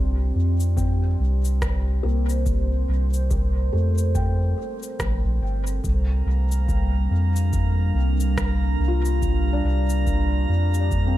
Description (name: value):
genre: ambient dub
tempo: 71 BPM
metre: 4/4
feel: swing 59% on 16ths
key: unclear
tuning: A4 = 439 Hz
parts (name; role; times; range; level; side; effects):
- deep dark ambient pad; sustained chords; 0.0-11.2 s; G3 to G5; -31 LUFS; right 1 dB; chorus, built-in reverb
- felt-muted upright piano; arpeggios; 0.0-11.2 s; A3 to G5; -33 LUFS; left 3 dB; dub echo
- soft dub sub bass; bass; 0.0-11.2 s; G1 to F2; -21 LUFS; equal; none
- electronic cabasa and rim click; drums; 0.6-11.1 s; none; -34 LUFS; left 1 dB; dub echo
- electronic kick drum; drums; 0.8-11.1 s; none; -27 LUFS; equal; none
- drifting glass-harmonics texture; texture; 6.2-11.2 s; Bb3 to Bb5; -32 LUFS; right 1 dB; chorus, built-in reverb
room: digital ambience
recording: echo-heavy mix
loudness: -20 LUFS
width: side -14 dB against mid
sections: 0.0-11.2 A section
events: none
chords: 0.0 C5; 5.8 Gm/C